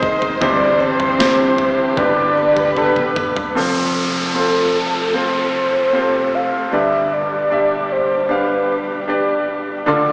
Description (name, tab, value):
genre	pop ballad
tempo	76 BPM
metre	4/4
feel	straight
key	unclear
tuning	A4 = 445 Hz
part	mellow horn-like synth lead	melody	0.0-9.1 s	A4 to F5	-21 LUFS	equal	chorus
part	clear baby grand piano	accompaniment	0.0-10.1 s	F1 to F5	-21 LUFS	equal	slapback echo
part	warm studio string section	sustained chords	0.0-10.1 s	G2 to C5	-27 LUFS	equal	none
part	fingerpicked plugged-in steel-string acoustic guitar	arpeggios	0.0-3.6 s	G3 to C5	-27 LUFS	equal	slapback echo
part	boom bap sampler-style drum kit	drums	0.0-3.5 s	kick drum, snare drum, toms	-27 LUFS	equal	slapback echo
part	downlifter	sound effects	3.6-9.9 s	none	-29 LUFS	equal	slapback echo
room	light reverb, small room reverb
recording	live gig heard through the venue's PA, recital hall reverb, small speaker sound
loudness	-17 LUFS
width	mono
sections	0.0-3.6 A section; 3.6-10.1 B section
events	drum fill 2.8-3.6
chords	0.4 C/G; 2.0 G; 3.6 F; 6.7 G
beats	| 0.41 1.19 1.98 2.77 | 3.56 4.36 5.15 5.94 | 6.73 7.52 8.31 9.09 | 9.88